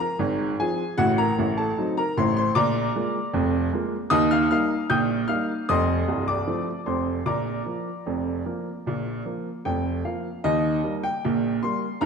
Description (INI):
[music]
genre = ragtime piano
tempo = 76 BPM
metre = 2/4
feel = straight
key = Eb major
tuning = A4 = 440 Hz
[part]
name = clear upright piano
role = solo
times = 0.0-12.1 s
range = C1 to G6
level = -22 LUFS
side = equal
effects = none
[sound]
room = wet scoring stage reverb, RT60 1.6 s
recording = dark, warm production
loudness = -22 LUFS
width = side -6 dB against mid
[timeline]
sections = 0.0-10.5 A section; 10.5-12.1 B section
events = none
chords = 0.0 Fm/Ab; 1.0 Adim7; 2.5 Bb7; 4.1 Eb; 5.7 F7; 7.3 Bb; 10.5 Eb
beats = 0.20 | 0.98 1.76 | 2.55 3.33 | 4.12 4.90 | 5.69 6.48 | 7.27 8.07 | 8.86 9.66 | 10.46 11.25 | 12.04